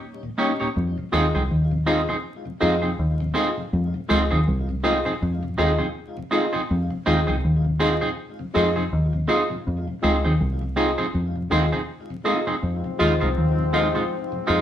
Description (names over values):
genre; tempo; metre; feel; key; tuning
reggae; 81 BPM; 4/4; swing 58% on 16ths; F minor; A4 = 440 Hz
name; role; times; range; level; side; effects
mellow tonewheel organ; accompaniment; 0.2-14.6 s; Eb2 to F4; -31 LUFS; left 2 dB; slow rotary speaker, tape echo
semi-hollow electric guitar; accompaniment; 0.4-14.6 s; Ab3 to Db5; -24 LUFS; right 2 dB; none
warm upright piano; stabs; 0.4-14.6 s; Db4 to Ab4; -26 LUFS; left 1 dB; none
deep dub fingered electric bass; bass; 0.8-14.6 s; C2 to F2; -23 LUFS; equal; none
bright trombone section; second line; 12.6-14.6 s; Ab2 to C4; -27 LUFS; left 4 dB; none
room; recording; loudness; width
wet studio reverb, RT60 0.7 s; band playing live in one room, vinyl crackle, lossy compression artefacts; -20 LUFS; side -10 dB against mid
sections
0.8-14.6 A section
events
none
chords
0.0 Eb7; 0.8 Fm7